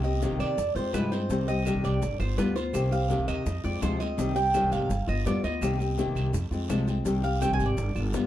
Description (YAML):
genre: latin, Cuban son and guajira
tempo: 167 BPM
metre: 4/4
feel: straight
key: C minor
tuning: A4 = 440 Hz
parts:
  - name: nylon-string guitar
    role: accompaniment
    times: 0.0-8.3 s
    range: C3 to G4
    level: -29 LUFS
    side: left 2 dB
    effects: none
  - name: Cuban tres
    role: arpeggios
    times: 0.0-8.0 s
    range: B4 to Ab5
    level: -31 LUFS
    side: right 3 dB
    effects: none
  - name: upright bass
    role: bass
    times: 0.0-8.3 s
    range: G1 to G2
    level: -29 LUFS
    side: right 1 dB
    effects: none
  - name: maracas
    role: percussion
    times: 0.0-8.3 s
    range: none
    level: -48 LUFS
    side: right 9 dB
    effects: none
  - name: bongos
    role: percussion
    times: 0.2-8.3 s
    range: none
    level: -40 LUFS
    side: left 5 dB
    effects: none
  - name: guiro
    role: percussion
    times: 0.2-8.3 s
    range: none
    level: -47 LUFS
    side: right 8 dB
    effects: none
  - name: claves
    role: percussion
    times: 0.4-8.1 s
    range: none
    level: -45 LUFS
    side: right 5 dB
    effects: none
room: light reverb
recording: dark, warm production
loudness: -25 LUFS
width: side -12 dB against mid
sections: 0.0-8.3 A section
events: Cuban tres solo 0.0-8.3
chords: 0.0 Cm7; 0.6 Fm; 1.3 Cm; 2.0 G7; 2.7 Cm7; 3.5 Fm; 4.2 Cm; 4.9 G7; 5.6 Cm7; 6.3 Fm; 7.1 Cm